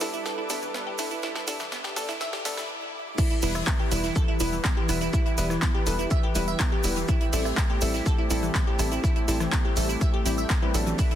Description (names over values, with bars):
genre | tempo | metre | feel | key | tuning
progressive house | 123 BPM | 4/4 | straight | E minor | A4 = 440 Hz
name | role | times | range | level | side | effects
warm analog pad | sustained chords | 0.0-11.2 s | E3 to B4 | -34 LUFS | right 1 dB | chorus, sidechain pumping
glassy wavetable pluck | arpeggios | 0.0-11.2 s | E3 to E5 | -31 LUFS | right 2 dB | chorus, sidechain pumping, ping-pong delay
deep mellow chord stab | stabs | 0.0-11.2 s | F#3 to B4 | -33 LUFS | left 3 dB | chorus, sidechain pumping, ping-pong delay
tight sequencer bass | bass | 0.0-10.9 s | E1 to A1 | -29 LUFS | equal | sidechain pumping
house drum kit | drums | 0.0-11.1 s | crash cymbal, handclaps, hi-hat, ride cymbal, rim click, snare drum | -32 LUFS | equal | overdrive, high-pass filter on snare, high-pass filter on hats, high-pass filter on cymbals, high-pass filter on room
tube shaker | percussion | 0.0-11.1 s | none | -39 LUFS | right 4 dB | none
riser and swell | sound effects | 0.2-3.2 s | none | -42 LUFS | left 1 dB | none
twinkling granular texture | texture | 0.0-2.7 s | D5 to D6 | -43 LUFS | right 1 dB | built-in reverb, sidechain pumping
damped 70s drum kit | drums | 3.2-11.2 s | hi-hat, shaker, snare drum | -41 LUFS | left 3 dB | none
electronic kick drum | drums | 3.2-11.1 s | none | -24 LUFS | equal | overdrive
room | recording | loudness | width
light reverb, digital ambience | dense, heavily limited modern master, high-pass filter | -23 LUFS | side -11 dB against mid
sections
0.0-3.2 A section; 3.2-11.2 B section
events
build-up 0.0-3.2; drum fill 0.0-2.7; filter sweep on synth stab 0.0-3.2; swell 2.2-3.2; stop 2.7-3.2; drop 3.2-11.2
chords
0.0 Gadd9; 3.2 Em; 7.1 Am7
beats
0.26 0.74 | 1.23 1.72 2.21 2.69 | 3.18 3.67 4.16 4.65 | 5.13 5.62 6.11 6.60 | 7.09 7.57 8.06 8.55 | 9.04 9.53 10.01 10.50 | 10.99